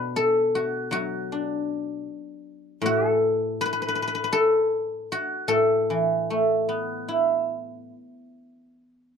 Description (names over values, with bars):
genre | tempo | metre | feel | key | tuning
chinese traditional, Chinese solo plucked strings | 78 BPM | 4/4 | rubato | unclear | A4 = 442 Hz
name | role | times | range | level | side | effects
guzheng | solo | 0.0-8.7 s | A2 to D6 | -22 LUFS | left 1 dB | none
room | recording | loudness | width
little or no reverb | dry, close 1970s-style studio recording | -22 LUFS | side -6 dB against mid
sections
0.0-9.2 A section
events
none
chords
none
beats
0.54 1.30 2.06 | 2.83 3.58 4.34 5.12 | 5.90 6.69 7.48 8.30